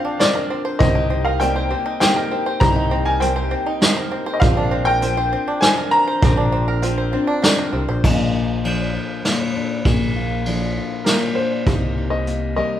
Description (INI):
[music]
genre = indie folk with a building arrangement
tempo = 99 BPM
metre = 3/4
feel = straight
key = unclear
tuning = A4 = 440 Hz
[part]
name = clear upright piano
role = melody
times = 0.0-7.4, 11.0-12.8 s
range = Bb4 to Bb5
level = -21 LUFS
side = left 1 dB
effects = none
[part]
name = felt-muted upright piano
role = accompaniment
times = 0.0-8.1 s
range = Bb1 to D5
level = -28 LUFS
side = right 2 dB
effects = none
[part]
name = picked steel-string acoustic guitar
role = accompaniment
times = 0.0-8.0 s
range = Bb2 to G4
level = -27 LUFS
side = left 4 dB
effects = none
[part]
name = bluegrass banjo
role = arpeggios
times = 0.0-8.0 s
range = C4 to C5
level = -25 LUFS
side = right 3 dB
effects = none
[part]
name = vintage brush drum kit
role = drums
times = 0.2-12.4 s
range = crash cymbal, hi-hat, kick drum, ride cymbal, snare drum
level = -19 LUFS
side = equal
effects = none
[part]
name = picked electric bass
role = bass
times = 0.8-12.6 s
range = Bb1 to C2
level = -23 LUFS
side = equal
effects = none
[part]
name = fingerpicked steel-string acoustic guitar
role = accompaniment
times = 8.0-12.8 s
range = Bb2 to Bb4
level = -23 LUFS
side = left 5 dB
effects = none
[sound]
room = moderate large studio reverb, RT60 1.2 s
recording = band playing live in one room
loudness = -16 LUFS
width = side -11 dB against mid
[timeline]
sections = 0.0-8.0 A section; 8.0-11.7 B section; 11.7-12.8 C section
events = none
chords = 0.0 Bbadd9; 0.8 Cm7; 4.4 Bbadd9; 8.0 Bb; 11.7 Cm7